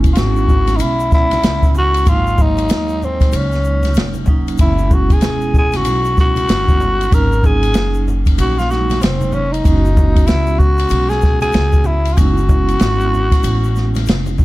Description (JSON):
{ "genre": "hip hop, jazz-hop", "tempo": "95 BPM", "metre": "4/4", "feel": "swing 61% on 16ths", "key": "unclear", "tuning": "A4 = 443 Hz", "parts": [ { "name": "vibraphone with soft mallets", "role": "accompaniment", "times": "0.0-14.4 s", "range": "F#3 to F#4", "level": "-22 LUFS", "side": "right 3 dB", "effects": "none" }, { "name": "upright bass", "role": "bass", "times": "0.0-14.4 s", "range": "E1 to D#2", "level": "-18 LUFS", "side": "equal", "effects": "none" }, { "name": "open jazz drum kit", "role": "drums", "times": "0.0-14.4 s", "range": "hi-hat, kick drum, ride cymbal, snare drum", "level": "-15 LUFS", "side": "equal", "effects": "none" }, { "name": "tube shaker and congas", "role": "percussion", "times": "0.0-14.4 s", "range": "none", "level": "-29 LUFS", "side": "left 2 dB", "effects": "none" }, { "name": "growling tenor saxophone", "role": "melody", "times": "0.1-14.1 s", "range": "B#3 to A#4", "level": "-18 LUFS", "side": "left 1 dB", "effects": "none" } ], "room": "little or no reverb", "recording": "none", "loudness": "-12 LUFS", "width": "side -18 dB against mid", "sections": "0.0-14.4 A section", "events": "none", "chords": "0.0 F#9sus4; 2.1 G#9sus4; 4.6 F#9sus4; 7.1 G#9sus4; 9.6 F#9sus4" }